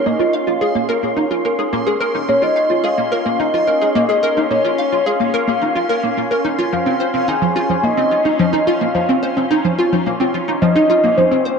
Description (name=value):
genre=ambient, sequencer-driven space music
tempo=108 BPM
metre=4/4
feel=straight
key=Bb minor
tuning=A4 = 440 Hz
part: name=soft octave-layered synth lead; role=melody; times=0.0-11.6 s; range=C5 to Ab5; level=-18 LUFS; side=left 1 dB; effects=chorus, ping-pong delay
part: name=bubbling stepped-filter texture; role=texture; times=0.0-11.6 s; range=Db4 to C6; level=-23 LUFS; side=right 1 dB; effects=chorus, built-in reverb
part: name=hollow square pluck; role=riff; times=0.1-11.5 s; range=F3 to F5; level=-17 LUFS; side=equal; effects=ensemble chorus, cassette tape, ping-pong delay
room=wet spring reverb, RT60 2.5 s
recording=echo-heavy mix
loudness=-14 LUFS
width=side -5 dB against mid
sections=0.0-11.6 A section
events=none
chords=0.0 Bbm; 6.7 Fm7